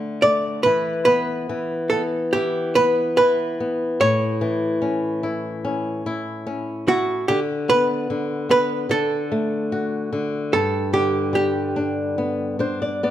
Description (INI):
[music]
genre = children's music, lullaby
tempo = 73 BPM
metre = 4/4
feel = rubato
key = G major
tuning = A4 = 440 Hz
[part]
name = archtop guitar, miked and amplified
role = melody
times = 0.0-13.1 s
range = F#4 to D5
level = -20 LUFS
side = right 2 dB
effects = none
[part]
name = flamenco guitar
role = accompaniment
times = 0.0-13.1 s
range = G2 to D5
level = -23 LUFS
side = left 2 dB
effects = none
[sound]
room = light reverb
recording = close, detailed microphones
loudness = -19 LUFS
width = side -11 dB against mid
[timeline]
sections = 0.0-13.1 A section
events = nylon-string guitar fill 12.2-13.1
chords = 0.0 D; 0.7 E5; 4.0 A; 7.3 G/D (rootless); 8.9 D; 10.5 G